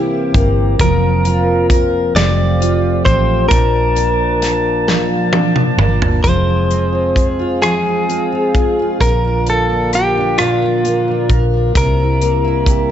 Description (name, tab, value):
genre	six-eight pop ballad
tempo	44 BPM (dotted quarters)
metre	6/8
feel	straight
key	Bb major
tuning	A4 = 444 Hz
part	direct-recorded clean electric guitar	melody	0.0-12.9 s	F4 to D5	-18 LUFS	equal	none
part	picked steel-string acoustic guitar	accompaniment	0.0-12.9 s	Bb2 to Bb4	-18 LUFS	right 1 dB	double-tracked left and right
part	tonewheel organ	sustained chords	0.0-12.9 s	C3 to A5	-20 LUFS	left 2 dB	slow rotary speaker
part	vintage muted fingered electric bass	bass	0.0-12.9 s	F1 to C2	-17 LUFS	equal	none
part	modern studio drum kit	drums	0.3-12.9 s	hi-hat, kick drum, rim click, snare drum, toms	-17 LUFS	equal	none
room	light reverb, small room ambience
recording	nothing above 7.8 kHz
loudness	-12 LUFS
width	side -10 dB against mid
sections	0.0-6.2 A section; 6.2-12.9 B section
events	drum fill 4.9-6.2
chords	0.0 C7; 0.8 Fsus4; 2.1 Fadd9; 3.5 Bbmaj7; 6.2 Fm; 9.0 Bb; 11.8 C7